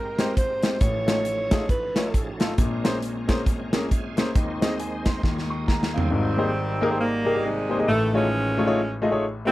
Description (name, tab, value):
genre	uptempo gospel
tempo	136 BPM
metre	4/4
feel	swing 60% on 8ths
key	Ab major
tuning	A4 = 440 Hz
part	breathy alto saxophone	melody	0.0-2.4 s	Bb4 to C#5	-27 LUFS	right 1 dB	none
part	clear grand piano	accompaniment	0.0-9.5 s	Ab1 to Db6	-25 LUFS	left 2 dB	none
part	bright tonewheel organ	sustained chords	0.0-6.4 s	A2 to Ab5	-35 LUFS	right 3 dB	slow rotary speaker, chorus vibrato
part	modern studio drum kit	drums	0.2-6.1 s	hi-hat, kick drum, snare drum, toms	-23 LUFS	equal	none
part	warm saxophone section	melody	5.9-9.5 s	C3 to C#4	-24 LUFS	right 1 dB	none
room	little or no reverb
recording	none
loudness	-21 LUFS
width	side -16 dB against mid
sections	0.0-6.1 A section; 6.1-9.5 B section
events	drum fill 5.2-6.1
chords	0.0 Abmaj9; 0.8 F7b13/A; 2.6 Bbm9; 4.4 Ab/Eb; 5.2 Eb9sus4; 6.1 Abmaj9; 7.9 F7alt/A